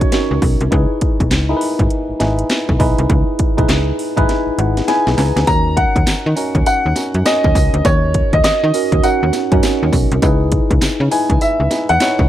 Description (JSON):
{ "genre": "R&B, new jack swing", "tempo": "101 BPM", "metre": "4/4", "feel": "swing 63% on 16ths", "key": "unclear", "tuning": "A4 = 440 Hz", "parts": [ { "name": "warm baby grand piano", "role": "melody", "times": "0.0-0.4, 4.9-12.3 s", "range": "C#5 to A#5", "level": "-18 LUFS", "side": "equal", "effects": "none" }, { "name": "tine electric piano", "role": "accompaniment", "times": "0.0-12.3 s", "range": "D#3 to A#5", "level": "-19 LUFS", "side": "right 1 dB", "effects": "phaser" }, { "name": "slap-like FM bass", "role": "bass", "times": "0.0-12.3 s", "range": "G#1 to D#3", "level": "-17 LUFS", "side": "equal", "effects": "none" }, { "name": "house drum kit", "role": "drums", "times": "0.0-12.3 s", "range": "handclaps, hi-hat, kick drum, snare drum, tambourine", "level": "-17 LUFS", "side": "equal", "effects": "none" } ], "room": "little or no reverb", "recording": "none", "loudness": "-13 LUFS", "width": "side -12 dB against mid", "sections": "0.0-5.5 A section; 5.5-12.3 B section", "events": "drum fill 4.3-5.5; tine electric piano fill 4.3-5.5", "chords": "0.0 D#m7; 0.7 C#m9; 5.5 D#m7; 10.2 C#m9" }